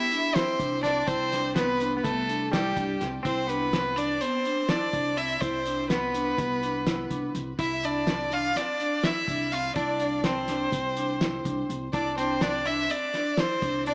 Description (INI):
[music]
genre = progressive instrumental, band music in an uneven meter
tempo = 249 BPM (eighths)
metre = 9/8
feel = straight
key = C major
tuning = A4 = 441 Hz
[part]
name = rich violin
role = melody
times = 0.0-13.9 s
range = G4 to F5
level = -30 LUFS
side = equal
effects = digital delay
[part]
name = clean electric guitar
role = second line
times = 0.0-13.9 s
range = G3 to F4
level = -35 LUFS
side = equal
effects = spring reverb
[part]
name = vibraphone with medium mallets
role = arpeggios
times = 0.1-13.9 s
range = B3 to E4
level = -35 LUFS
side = equal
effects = none
[part]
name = cloth-damped thuddy drum kit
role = drums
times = 0.1-13.9 s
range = hi-hat, kick drum, snare drum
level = -33 LUFS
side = equal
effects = none
[part]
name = upright bass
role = bass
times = 0.6-13.9 s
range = C2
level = -39 LUFS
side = equal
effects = none
[sound]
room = moderate plate reverb, RT60 1.9 s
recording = small speaker sound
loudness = -27 LUFS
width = mono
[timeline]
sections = 0.0-13.9 A section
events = none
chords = 0.0 Cmaj9; 7.6 Cadd9